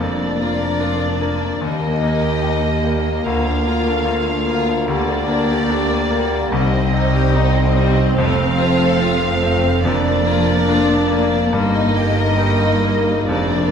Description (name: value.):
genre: cinematic.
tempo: 73 BPM.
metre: 4/4.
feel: rubato.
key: Bb major.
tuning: A4 = 440 Hz.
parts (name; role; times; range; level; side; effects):
rich symphonic violin section; melody; 0.0-13.7 s; D5 to F5; -24 LUFS; left 1 dB; none.
rich studio violin section; second line; 0.0-13.7 s; G3 to Bb4; -26 LUFS; left 3 dB; none.
bright grand piano; accompaniment; 0.0-13.7 s; C2 to G4; -23 LUFS; left 1 dB; none.
warm symphonic viola section; accompaniment; 0.0-13.7 s; Bb3 to C4; -25 LUFS; left 1 dB; none.
mellow French horn section; sustained chords; 0.0-13.7 s; G3 to G4; -23 LUFS; left 2 dB; none.
concert harp; arpeggios; 0.0-13.7 s; F2 to D5; -24 LUFS; left 2 dB; none.
rich studio double bass section; bass; 0.0-13.7 s; F1 to Eb2; -24 LUFS; right 4 dB; none.
rich symphonic cello section; bass; 0.0-13.7 s; C2 to G2; -24 LUFS; right 3 dB; none.
room: wet scoring stage reverb, RT60 1.8 s.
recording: minimal, uncompressed stereo recording.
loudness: -15 LUFS.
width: side -7 dB against mid.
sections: 0.0-13.7 A section.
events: none.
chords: 0.0 Bb/F; 1.6 Eb; 3.3 Bb/D; 4.9 Gm/D; 6.5 Cm; 8.2 F; 9.8 Bb/F; 11.5 Eb/G.